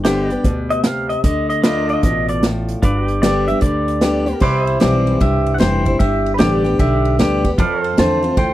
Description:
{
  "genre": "honky-tonk and classic country",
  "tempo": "151 BPM",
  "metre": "4/4",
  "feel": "swing 65% on 8ths",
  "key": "C major",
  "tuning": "A4 = 443 Hz",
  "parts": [
    { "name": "picked steel-string acoustic guitar", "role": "accompaniment", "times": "0.0-8.5 s", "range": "F2 to G4", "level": "-20 LUFS", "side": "left 2 dB", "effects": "none" },
    { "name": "pedal steel guitar", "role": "sustained chords", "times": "0.0-8.5 s", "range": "F4 to E5", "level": "-26 LUFS", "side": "right 2 dB", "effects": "lush chorus" },
    { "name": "upright bass", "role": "bass", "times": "0.0-8.5 s", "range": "F1 to F2", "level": "-21 LUFS", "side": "equal", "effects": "none" },
    { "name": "unplugged drum kit", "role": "drums", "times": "0.0-8.5 s", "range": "crash cymbal, hi-hat, kick drum, ride cymbal, snare drum", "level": "-17 LUFS", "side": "right 1 dB", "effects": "none" },
    { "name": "pedal steel guitar", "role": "melody", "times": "0.7-8.5 s", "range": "E4 to A5", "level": "-20 LUFS", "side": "right 1 dB", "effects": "none" }
  ],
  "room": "little or no reverb",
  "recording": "dry, close 1970s-style studio recording",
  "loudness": "-14 LUFS",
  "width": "side -14 dB against mid",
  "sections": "0.0-4.4 A section; 4.4-8.5 B section",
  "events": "pedal steel guitar solo 0.0-4.4",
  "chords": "0.0 G; 1.2 Dm; 2.8 G; 4.4 C; 6.0 G; 7.6 F6",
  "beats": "0.04 0.44 0.84 | 1.24 1.63 2.03 2.43 | 2.82 3.22 3.62 4.01 | 4.41 4.80 5.20 5.60 | 5.99 6.39 6.79 7.18 | 7.58 7.97 8.37"
}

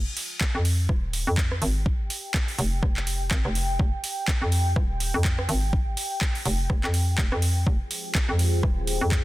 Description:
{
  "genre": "bass house",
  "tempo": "124 BPM",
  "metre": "4/4",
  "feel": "swing 58% on 16ths",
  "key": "F minor",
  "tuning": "A4 = 440 Hz",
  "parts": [
    { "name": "hollow knocking FM bass", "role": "bass", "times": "0.0-9.2 s", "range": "Eb1 to F2", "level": "-24 LUFS", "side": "equal", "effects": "tube saturation, sidechain pumping" },
    { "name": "garage drum kit", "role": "drums", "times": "0.2-9.2 s", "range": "handclaps, hi-hat, rim click", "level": "-30 LUFS", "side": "right 1 dB", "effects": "overdrive, small room ambience" },
    { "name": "deep dark ambient pad", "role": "texture", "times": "1.8-9.2 s", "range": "G5", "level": "-36 LUFS", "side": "equal", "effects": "chorus, built-in reverb, sidechain pumping" },
    { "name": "electronic kick drum", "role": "drums", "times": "0.4-9.2 s", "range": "none", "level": "-24 LUFS", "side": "equal", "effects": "overdrive, small room ambience" },
    { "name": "dark analog pad", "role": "sustained chords", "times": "7.9-9.2 s", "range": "F4 to G5", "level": "-32 LUFS", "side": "left 1 dB", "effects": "chorus, sidechain pumping" }
  ],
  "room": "digital ambience",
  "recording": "dense, heavily limited modern master",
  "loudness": "-22 LUFS",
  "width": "side -17 dB against mid",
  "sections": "0.0-9.2 A section",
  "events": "none",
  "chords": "0.0 Fmadd9",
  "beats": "0.41 0.89 1.38 | 1.86 2.34 2.83 3.31 | 3.79 4.28 4.76 5.25 | 5.73 6.21 6.70 7.18 | 7.67 8.15 8.63 9.12"
}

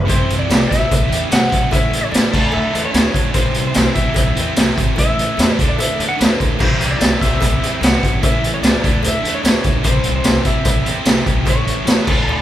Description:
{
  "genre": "classic rock",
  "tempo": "148 BPM",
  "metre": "4/4",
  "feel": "straight",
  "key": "unclear",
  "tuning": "A4 = 440 Hz",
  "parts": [
    { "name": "clean lap steel guitar", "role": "melody", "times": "0.0-12.4 s", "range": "B4 to F#5", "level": "-23 LUFS", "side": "equal", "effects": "none" },
    { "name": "distorted electric guitar", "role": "riff", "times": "0.0-12.4 s", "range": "A2 to E4", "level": "-21 LUFS", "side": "right 1 dB", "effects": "distortion" },
    { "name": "upright bass", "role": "bass", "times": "0.0-12.4 s", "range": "G1 to E2", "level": "-23 LUFS", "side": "equal", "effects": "none" },
    { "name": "raw garage drum kit", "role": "drums", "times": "0.1-12.2 s", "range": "crash cymbal, hi-hat, kick drum, snare drum, tambourine", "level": "-15 LUFS", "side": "equal", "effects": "none" },
    { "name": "cowbell", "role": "percussion", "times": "0.1-12.4 s", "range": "none", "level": "-34 LUFS", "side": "left 7 dB", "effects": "none" }
  ],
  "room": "light reverb",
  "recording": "band playing live in one room",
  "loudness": "-13 LUFS",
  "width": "side -12 dB against mid",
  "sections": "0.1-12.4 A section",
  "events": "none",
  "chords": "0.1 C; 1.7 A; 2.3 Dsus2; 3.3 C; 5.0 A; 5.6 Dsus2; 6.6 C; 8.2 A; 8.8 Dsus2; 9.8 C; 11.5 A",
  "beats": "| 0.09 0.50 0.90 1.31 | 1.72 2.12 2.53 2.94 | 3.34 3.75 4.16 4.56 | 4.97 5.38 5.78 6.19 | 6.59 7.00 7.41 7.81 | 8.22 8.62 9.03 9.44 | 9.84 10.25 10.65 11.06 | 11.46 11.87 12.27"
}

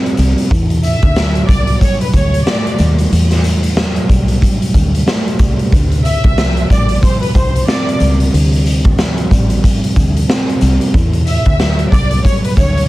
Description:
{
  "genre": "hip hop, boom-bap hip-hop",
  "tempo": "92 BPM",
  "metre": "4/4",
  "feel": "swing 58% on 16ths",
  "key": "unclear",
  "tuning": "A4 = 440 Hz",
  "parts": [
    { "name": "mellow tine electric piano", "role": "accompaniment", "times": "0.0-12.9 s", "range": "A2 to C4", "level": "-18 LUFS", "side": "right 1 dB", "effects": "high-pass filter, low-pass filter" },
    { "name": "raw garage drum kit", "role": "drums", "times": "0.1-12.9 s", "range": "hi-hat, kick drum, snare drum", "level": "-14 LUFS", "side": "equal", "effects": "none" },
    { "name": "deep dub fingered electric bass", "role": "bass", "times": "0.2-12.8 s", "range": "A1 to E2", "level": "-14 LUFS", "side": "equal", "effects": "none" },
    { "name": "sleigh bells", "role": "percussion", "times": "0.2-12.8 s", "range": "none", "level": "-36 LUFS", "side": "left 5 dB", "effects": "none" },
    { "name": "warm studio violin section", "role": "melody", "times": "0.8-12.9 s", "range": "B4 to E5", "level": "-20 LUFS", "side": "equal", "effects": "high-pass filter, low-pass filter" }
  ],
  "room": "little or no reverb",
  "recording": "dense, heavily limited modern master, vinyl crackle",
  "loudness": "-10 LUFS",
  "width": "side -18 dB against mid",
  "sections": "0.0-12.9 A section",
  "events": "none",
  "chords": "0.0 Dm11 (rootless); 0.5 Em11; 5.7 Dm11; 10.9 Em11",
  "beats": "| 0.51 1.16 1.81 2.46 | 3.12 3.77 4.42 5.07 | 5.72 6.38 7.03 7.68 | 8.33 8.99 9.64 10.29 | 10.94 11.60 12.25"
}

